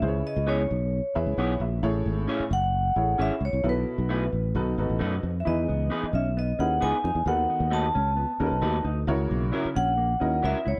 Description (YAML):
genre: soul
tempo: 133 BPM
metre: 4/4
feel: straight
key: unclear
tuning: A4 = 441 Hz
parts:
  - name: vibraphone with medium hard mallets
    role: melody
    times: 0.0-10.8 s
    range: B4 to A5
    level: -30 LUFS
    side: equal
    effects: none
  - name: warm upright piano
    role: accompaniment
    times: 0.0-10.7 s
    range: A2 to G#5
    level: -34 LUFS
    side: equal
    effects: none
  - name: sustaining fretless electric bass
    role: bass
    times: 0.0-10.8 s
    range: F#1 to F#2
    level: -29 LUFS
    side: equal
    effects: ensemble chorus
  - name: electric guitar through a small old amp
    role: stabs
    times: 0.5-10.6 s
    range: F#3 to C#5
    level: -34 LUFS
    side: equal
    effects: none
  - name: mellow electric guitar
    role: riff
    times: 5.5-10.8 s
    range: A#3 to F#4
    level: -37 LUFS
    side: equal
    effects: none
room: light reverb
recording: dark, warm production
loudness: -26 LUFS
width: mono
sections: 0.0-10.8 A section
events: upright piano fill 0.9-1.8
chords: 0.0 C#m7; 1.8 Amaj7; 3.6 B7sus4; 4.6 B7; 5.5 Emaj7; 7.3 B7; 9.1 F#7